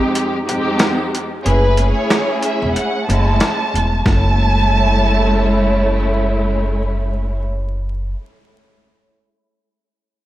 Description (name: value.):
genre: hip hop, boom-bap hip-hop.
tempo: 92 BPM.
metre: 4/4.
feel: swing 57% on 16ths.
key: F# minor.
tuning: A4 = 440 Hz.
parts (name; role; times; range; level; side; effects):
dark studio string section; accompaniment; 0.0-7.4 s; F2 to G#4; -18 LUFS; equal; cassette tape, high-pass filter, low-pass filter.
boom bap sampler-style drum kit; drums; 0.2-4.2 s; hi-hat, kick drum, rim click, snare drum; -19 LUFS; equal; overdrive.
warm studio violin section; melody; 1.5-6.0 s; B4 to A5; -20 LUFS; right 1 dB; high-pass filter, low-pass filter, tape echo.
upright bass; bass; 1.5-8.1 s; E1 to F#1; -17 LUFS; equal; none.
room: moderate plate reverb, RT60 2.9 s.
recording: dreamy mix soaked in reverb, vinyl crackle.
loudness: -14 LUFS.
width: side -14 dB against mid.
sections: 0.0-1.4 A section; 1.4-4.1 B section; 4.1-6.7 C section.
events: break 0.0-1.4; kick muted 1.4-4.1.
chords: 0.0 Fm9; 1.4 F#m9.